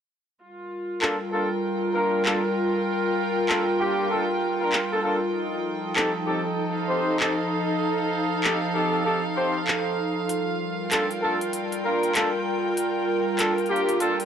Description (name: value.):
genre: glitch hop.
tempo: 97 BPM.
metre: 4/4.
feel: swing 62% on 16ths.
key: G minor.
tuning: A4 = 441 Hz.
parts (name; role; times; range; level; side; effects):
warbly tape-like pad; sustained chords; 0.7-14.3 s; F3 to Bb4; -28 LUFS; equal; chorus, built-in reverb.
rich chamber string section; texture; 0.4-14.3 s; Eb4 to G5; -28 LUFS; right 1 dB; none.
warm horn section; stabs; 1.0-14.2 s; Bb3 to C5; -26 LUFS; left 1 dB; low-pass filter, analog delay.
drum and bass drum kit; drums; 1.0-14.3 s; handclaps, hi-hat; -26 LUFS; left 1 dB; none.
room: light reverb, small room ambience.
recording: dry, gritty hardware recording, cassette tape.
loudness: -22 LUFS.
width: side -8 dB against mid.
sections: 0.4-14.3 A section.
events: none.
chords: 0.4 Gm7; 5.3 F7; 10.3 Gm7.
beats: | 0.40 1.02 1.64 2.25 | 2.87 3.49 4.11 4.73 | 5.35 5.97 6.58 7.20 | 7.82 8.44 9.06 9.68 | 10.30 10.91 11.53 12.15 | 12.77 13.39 14.01.